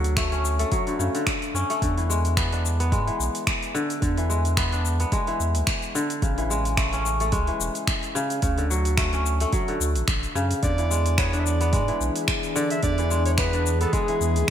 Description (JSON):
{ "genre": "organic downtempo", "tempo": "109 BPM", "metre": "4/4", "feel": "swing 56% on 16ths", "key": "E mixolydian", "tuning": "A4 = 440 Hz", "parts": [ { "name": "kora", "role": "arpeggios", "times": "0.0-14.5 s", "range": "C#3 to D4", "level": "-26 LUFS", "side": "left 1 dB", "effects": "digital delay" }, { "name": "warm sub bass", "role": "bass", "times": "0.0-14.4 s", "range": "E1 to G#2", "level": "-24 LUFS", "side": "equal", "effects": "sidechain pumping" }, { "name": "afro-pop drum kit", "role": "drums", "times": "0.0-14.5 s", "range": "cabasa, finger snaps, hi-hat", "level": "-29 LUFS", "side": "left 1 dB", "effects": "overdrive, gated reverb" }, { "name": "electronic kick drum", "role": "drums", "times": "0.2-14.1 s", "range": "none", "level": "-27 LUFS", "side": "equal", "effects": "overdrive" }, { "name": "clear clarinet", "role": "melody", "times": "10.6-14.5 s", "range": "G#4 to E5", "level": "-28 LUFS", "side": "right 2 dB", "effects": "vintage 12-bit sampler grit, ping-pong delay" }, { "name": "warbly tape-like pad", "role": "sustained chords", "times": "11.0-14.5 s", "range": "E3 to G#4", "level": "-30 LUFS", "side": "left 2 dB", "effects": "chorus, built-in reverb, sidechain pumping" } ], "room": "moderate lush hall reverb, RT60 1.9 s", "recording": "bright 1980s-style digital production", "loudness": "-21 LUFS", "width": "side -9 dB against mid", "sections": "0.0-1.8 A section; 1.8-14.5 B section", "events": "none", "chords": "0.0 Dmaj7; 1.8 E7; 6.2 Amaj7; 8.4 Dmaj7; 10.6 E7" }